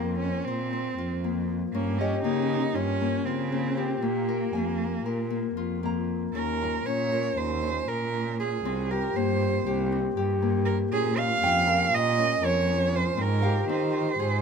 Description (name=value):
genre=contemporary instrumental, chamber music in an uneven meter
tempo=237 BPM (eighths)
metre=9/8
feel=straight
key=Bb dorian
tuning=A4 = 440 Hz
part: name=warm cello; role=melody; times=0.0-14.4 s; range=Bb3 to F5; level=-28 LUFS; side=right 5 dB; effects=none
part: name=Celtic harp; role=arpeggios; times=0.0-14.4 s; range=Bb3 to C5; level=-29 LUFS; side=left 6 dB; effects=none
part: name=dark cello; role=bass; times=0.0-14.4 s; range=C2 to Eb3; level=-29 LUFS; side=right 2 dB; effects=none
part: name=nylon-string guitar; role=texture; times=2.0-14.4 s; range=Eb5 to Bb5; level=-36 LUFS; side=right 2 dB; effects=none
room=light reverb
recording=none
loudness=-24 LUFS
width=side -6 dB against mid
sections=0.0-6.4 A section; 6.4-14.4 B section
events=none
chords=0.0 Bbsus2; 1.7 Gm7b5; 4.0 Bb5; 6.4 Ebsus2; 8.7 C5; 10.9 Bbm; 13.2 Abmaj7